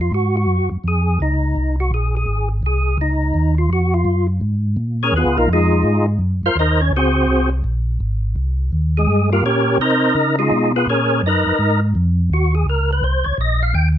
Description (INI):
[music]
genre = jazz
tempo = 167 BPM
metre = 4/4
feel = swing 65% on 8ths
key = Ab mixolydian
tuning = A4 = 440 Hz
[part]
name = percussive tonewheel organ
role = melody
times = 0.0-13.9 s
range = Ab3 to G5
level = -18 LUFS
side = equal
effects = slow rotary speaker, overdrive, chorus vibrato
[part]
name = mellow tonewheel organ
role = bass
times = 0.0-14.0 s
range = Ab1 to Db3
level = -17 LUFS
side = equal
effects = chorus vibrato, slow rotary speaker
[sound]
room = light reverb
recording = nothing above 7.5 kHz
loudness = -15 LUFS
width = side -11 dB against mid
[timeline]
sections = 0.0-14.0 A section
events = tonewheel organ solo 0.0-14.0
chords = 0.1 Ab13; 3.0 Db13; 5.8 Ab13; 8.7 Eb13; 10.2 Db13; 11.6 Ab69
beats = | 0.12 0.48 0.83 1.19 | 1.55 1.91 2.27 2.63 | 2.98 3.34 3.70 4.06 | 4.42 4.77 5.13 5.49 | 5.85 6.21 6.57 6.92 | 7.28 7.64 8.00 8.36 | 8.72 9.08 9.44 9.79 | 10.15 10.51 10.87 11.23 | 11.59 11.95 12.31 12.67 | 13.03 13.39 13.75